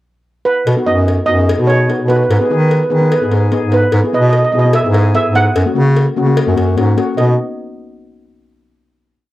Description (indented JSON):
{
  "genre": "calypso",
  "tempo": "148 BPM",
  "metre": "4/4",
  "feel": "straight",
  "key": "B major",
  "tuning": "A4 = 440 Hz",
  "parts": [
    { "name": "steel pan", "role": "melody", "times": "0.5-7.4 s", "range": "B4 to F#5", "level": "-16 LUFS", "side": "right 3 dB", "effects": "none" },
    { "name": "bright bass clarinet", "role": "bass", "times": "0.7-7.4 s", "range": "F#2 to D#3", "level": "-13 LUFS", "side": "equal", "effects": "none" },
    { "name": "cowbell", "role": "percussion", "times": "0.7-7.4 s", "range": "none", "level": "-22 LUFS", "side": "left 3 dB", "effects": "none" },
    { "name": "steel pan", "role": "accompaniment", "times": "0.8-7.4 s", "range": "A#3 to B4", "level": "-18 LUFS", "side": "left 3 dB", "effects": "none" }
  ],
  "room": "light reverb",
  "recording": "dry, close 1970s-style studio recording",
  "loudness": "-11 LUFS",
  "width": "side -16 dB against mid",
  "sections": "0.0-0.7 pickup bar; 0.7-7.2 verse; 7.2-8.8 final chord",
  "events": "none",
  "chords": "0.0 N.C.; 0.7 Badd9; 2.3 G#m; 3.9 E/G#; 5.6 F#; 7.2 B",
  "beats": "0.26 | 0.67 1.07 1.48 1.89 | 2.30 2.71 3.12 3.52 | 3.93 4.33 4.74 5.15 | 5.55 5.96 6.36 6.77 | 7.17"
}